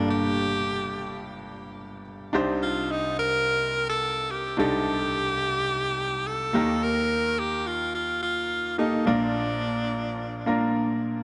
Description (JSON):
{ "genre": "pop", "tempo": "107 BPM", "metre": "4/4", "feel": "straight", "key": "unclear", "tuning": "A4 = 440 Hz", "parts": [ { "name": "edgy tenor saxophone", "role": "melody", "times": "0.0-10.7 s", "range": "D4 to Bb4", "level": "-29 LUFS", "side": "equal", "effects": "digital delay" }, { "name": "bright grand piano", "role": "accompaniment", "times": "0.0-11.2 s", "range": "G1 to C5", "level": "-29 LUFS", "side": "equal", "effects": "none" } ], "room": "moderate lush hall reverb, RT60 2.6 s", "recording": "dark, warm production, nothing above 10.9 kHz", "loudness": "-26 LUFS", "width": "mono", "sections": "0.0-11.2 A section", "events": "none", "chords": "0.0 Gmadd9; 2.3 Cmadd9; 6.5 Eb; 9.1 Bb" }